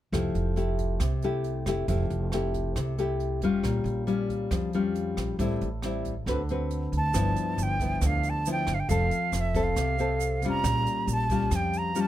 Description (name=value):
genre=bossa nova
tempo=137 BPM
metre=4/4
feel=straight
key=F major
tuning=A4 = 440 Hz
part: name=nylon-string guitar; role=accompaniment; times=0.1-12.1 s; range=G2 to B4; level=-28 LUFS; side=left 3 dB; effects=none
part: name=upright bass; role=bass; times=0.1-12.1 s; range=F1 to F2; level=-30 LUFS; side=right 1 dB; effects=none
part: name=jazz brush drum kit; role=drums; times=0.1-12.1 s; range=hi-hat, kick drum, rim click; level=-35 LUFS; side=right 2 dB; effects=none
part: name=jazz flute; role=melody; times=7.0-12.1 s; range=E5 to Bb5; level=-29 LUFS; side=right 3 dB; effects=none
part: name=tube shaker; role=percussion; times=7.1-12.1 s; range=none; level=-41 LUFS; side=right 12 dB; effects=none
room=little or no reverb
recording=close, detailed microphones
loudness=-25 LUFS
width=side -13 dB against mid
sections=0.1-7.1 A section; 7.1-12.1 B section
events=none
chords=0.1 Fmaj9; 3.6 Bbm6; 5.4 Am7; 6.3 D6; 7.1 G13; 8.9 F; 10.6 Bbm6